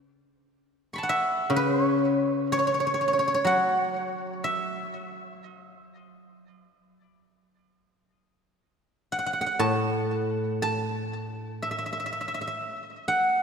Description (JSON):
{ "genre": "chinese traditional, Chinese solo plucked strings", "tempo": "55-63 BPM", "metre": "4/4", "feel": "rubato", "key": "A gong mode", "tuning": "A4 = 440 Hz", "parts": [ { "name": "guzheng", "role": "solo", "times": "0.9-13.4 s", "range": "A2 to C#6", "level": "-24 LUFS", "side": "equal", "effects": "none" } ], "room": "wet lush hall reverb, RT60 2.9 s", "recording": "dreamy mix soaked in reverb", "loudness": "-24 LUFS", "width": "side -6 dB against mid", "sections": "0.0-13.4 A section", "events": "none", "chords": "none" }